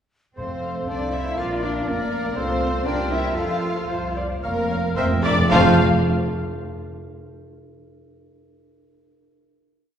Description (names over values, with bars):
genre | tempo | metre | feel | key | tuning
quick classical-period movement for symphony orchestra | 108-123 BPM | 2/4 | rubato | F major | A4 = 439 Hz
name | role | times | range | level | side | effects
warm chamber violin section | melody | 0.4-5.8 s | F4 to F5 | -30 LUFS | left 4 dB | none
bright oboe | second line | 0.4-5.7 s | C5 to F5 | -32 LUFS | equal | none
mellow hollow concert flute | second line | 0.4-5.8 s | F5 to A5 | -31 LUFS | left 2 dB | none
warm clarinet | second line | 0.4-5.7 s | A4 to D5 | -31 LUFS | left 1 dB | none
rich symphonic viola section | accompaniment | 0.4-5.8 s | A4 to G5 | -28 LUFS | left 1 dB | none
mellow French horn section | sustained chords | 0.4-5.7 s | A3 to G4 | -30 LUFS | equal | none
dark chamber cello section | bass | 0.4-5.8 s | F2 to F4 | -26 LUFS | right 2 dB | none
dark chamber double bass section | bass | 0.4-5.8 s | F1 to F2 | -26 LUFS | right 2 dB | none
timpani | percussion | 0.4-1.1, 5.0-5.8 s | F2 | -27 LUFS | equal | none
rich chamber violin section | second line | 0.9-5.8 s | A3 to D5 | -33 LUFS | left 2 dB | none
room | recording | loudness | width
wet concert hall reverb, RT60 2.1 s | heard from further back in the room | -19 LUFS | side -8 dB against mid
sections
0.4-4.4 A section; 4.4-5.5 coda; 5.5-6.6 final chord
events
slowing down 2.9-5.5; timpani fill 5.0-5.5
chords
0.4 F; 1.4 Bb; 2.4 F/C; 2.9 C7; 3.4 F; 4.4 Bb5/F; 5.0 C7/F; 5.5 F